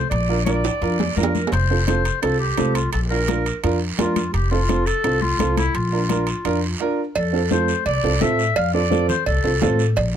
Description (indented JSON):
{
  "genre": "latin, cumbia",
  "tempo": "170 BPM",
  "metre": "4/4",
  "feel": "straight",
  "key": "F major",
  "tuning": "A4 = 440 Hz",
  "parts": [
    { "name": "clear clarinet", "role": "melody", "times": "0.0-9.9 s", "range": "E4 to F5", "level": "-24 LUFS", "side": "left 2 dB", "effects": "none" },
    { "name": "upright bass", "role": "bass", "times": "0.0-10.2 s", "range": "F1 to A2", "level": "-22 LUFS", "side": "equal", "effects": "none" },
    { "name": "guiro", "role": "percussion", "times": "0.1-10.2 s", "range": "none", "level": "-34 LUFS", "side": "right 8 dB", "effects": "none" },
    { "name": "timbales and cowbell", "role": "percussion", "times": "0.1-10.1 s", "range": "none", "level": "-26 LUFS", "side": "right 6 dB", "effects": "none" },
    { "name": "warm upright piano", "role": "accompaniment", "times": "0.3-9.8 s", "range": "C4 to Bb4", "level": "-23 LUFS", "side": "right 4 dB", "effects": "none" },
    { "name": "congas", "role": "percussion", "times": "0.3-10.1 s", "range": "none", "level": "-28 LUFS", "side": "left 5 dB", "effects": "none" }
  ],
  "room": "little or no reverb",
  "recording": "close, detailed microphones",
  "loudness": "-18 LUFS",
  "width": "side -9 dB against mid",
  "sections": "0.0-7.2 A section; 7.2-10.2 B section",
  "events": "drum fill 0.6-1.5",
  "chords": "0.1 Bb; 1.5 F; 2.9 Bb; 4.3 F; 5.7 Bb; 7.2 F",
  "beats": "| 0.12 0.47 0.82 1.17 | 1.52 1.88 2.23 2.58 | 2.93 3.29 3.64 3.99 | 4.34 4.69 5.04 5.40 | 5.75 6.10 6.45 6.80 | 7.16 7.51 7.86 8.21 | 8.56 8.92 9.27 9.62 | 9.97"
}